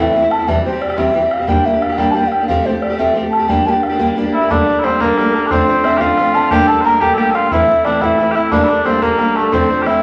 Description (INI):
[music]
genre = celtic folk, Celtic jig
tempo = 119 BPM (dotted quarters)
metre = 6/8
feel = straight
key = G dorian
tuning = A4 = 439 Hz
[part]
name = mellow hollow wooden flute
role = melody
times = 0.0-10.0 s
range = A4 to Bb5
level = -18 LUFS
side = equal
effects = none
[part]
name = fingerpicked old ladder-braced acoustic guitar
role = accompaniment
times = 0.0-10.0 s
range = F2 to G4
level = -20 LUFS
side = equal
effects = none
[part]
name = bodhran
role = percussion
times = 0.1-9.9 s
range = none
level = -26 LUFS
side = equal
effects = none
[part]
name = mellow small bagpipes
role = second line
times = 4.3-10.0 s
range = A3 to C5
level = -19 LUFS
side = equal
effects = none
[sound]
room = wet large studio reverb, RT60 1.2 s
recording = none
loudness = -14 LUFS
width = mono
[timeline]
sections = 0.0-4.5 A section; 4.5-10.0 B section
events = none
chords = 0.5 C; 1.5 Gm; 2.5 Fadd9; 3.5 Gm; 4.5 Gmadd9; 5.5 F6; 6.5 Gmadd9; 7.5 Am; 8.5 Gmadd9; 9.5 F6